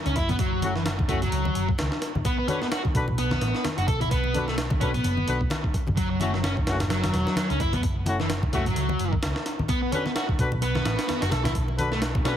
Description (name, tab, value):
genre	breakbeat, breaks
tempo	129 BPM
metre	4/4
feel	swing 57% on 16ths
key	F# minor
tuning	A4 = 441 Hz
part	fuzz guitar	riff	0.1-12.3 s	E3 to A4	-28 LUFS	equal	distortion, overdrive, vintage 12-bit sampler grit, digital delay
part	hollow-body short-scale picked electric bass	bass	0.1-12.4 s	E1 to C#2	-28 LUFS	equal	none
part	breakbeat sampler-style drum kit	drums	0.1-12.4 s	hi-hat, kick drum, snare drum	-28 LUFS	equal	none
part	congas	percussion	0.2-12.2 s	none	-32 LUFS	left 2 dB	none
part	warm brass ensemble	stabs	0.6-12.3 s	A3 to B4	-31 LUFS	left 2 dB	digital delay
room	light reverb, digital ambience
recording	heavily compressed radio sound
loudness	-23 LUFS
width	side -10 dB against mid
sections	0.0-12.4 A section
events	none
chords	0.0 F#m7; 2.3 Bm7; 6.0 F#m7; 9.7 Bm7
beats	| 0.39 0.86 1.32 1.79 | 2.25 2.72 3.18 3.65 | 4.11 4.58 5.04 5.51 | 5.97 6.44 6.90 7.37 | 7.83 8.30 8.76 9.23 | 9.69 10.16 10.62 11.09 | 11.55 12.02